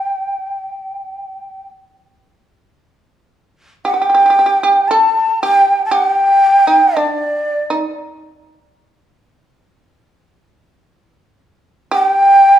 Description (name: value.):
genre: japanese traditional, Japanese chamber music.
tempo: 51-62 BPM.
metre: 4/4.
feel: rubato.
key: unclear.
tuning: A4 = 444 Hz.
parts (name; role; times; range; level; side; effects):
breathy mellow shakuhachi; melody; 0.0-12.6 s; D5 to A5; -12 LUFS; equal; none.
shamisen; second line; 0.0-12.6 s; D4 to A4; -19 LUFS; right 2 dB; none.
room: moderate recital hall reverb, RT60 1.4 s.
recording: small room ambience.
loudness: -11 LUFS.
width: side -10 dB against mid.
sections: 0.0-2.8 A section; 2.8-12.6 B section.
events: none.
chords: none.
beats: 0.59 1.71 | 2.82 3.87 4.91 5.92 | 6.95 7.97 8.96 9.96 | 10.95 11.92.